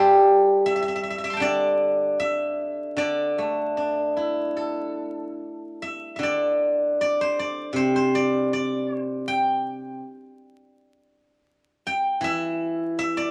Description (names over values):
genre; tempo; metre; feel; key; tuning
chinese traditional, Chinese solo plucked strings; 72-82 BPM; 4/4; rubato; D shang mode; A4 = 442 Hz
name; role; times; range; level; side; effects
steel-string zither; solo; 0.0-13.3 s; C3 to D6; -24 LUFS; equal; none
room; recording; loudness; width
light reverb; vinyl crackle; -24 LUFS; mono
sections
0.0-6.2 A section; 6.2-13.3 B section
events
none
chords
none